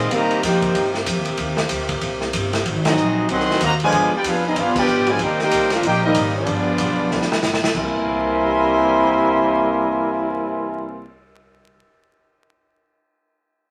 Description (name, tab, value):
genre	jazz, big band swing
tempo	189 BPM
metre	4/4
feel	swing 61% on 8ths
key	unclear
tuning	A4 = 439 Hz
part	bright trumpet section	melody	0.0-11.1 s	B3 to C6	-25 LUFS	equal	none
part	warm trombone section	second line	0.0-11.1 s	C3 to G4	-22 LUFS	equal	none
part	brilliant trombone section	sustained chords	0.0-11.1 s	C3 to Bb4	-30 LUFS	equal	none
part	upright bass	bass	0.0-11.8 s	G1 to C3	-29 LUFS	equal	none
part	swinging big-band drum kit	drums	0.1-10.2 s	crash cymbal, cymbal swell, hi-hat, kick drum, ride cymbal, snare drum	-27 LUFS	equal	none
room	wet studio ambience, RT60 0.5 s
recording	vinyl crackle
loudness	-19 LUFS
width	mono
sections	0.0-7.7 A section; 7.7-10.3 B section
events	band accent 2.8, 4.7; drum fill 7.1-7.7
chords	0.1 Cm7; 2.7 Ab7; 3.9 G7b9; 5.2 Cm7; 6.5 G7b9; 7.7 C7b13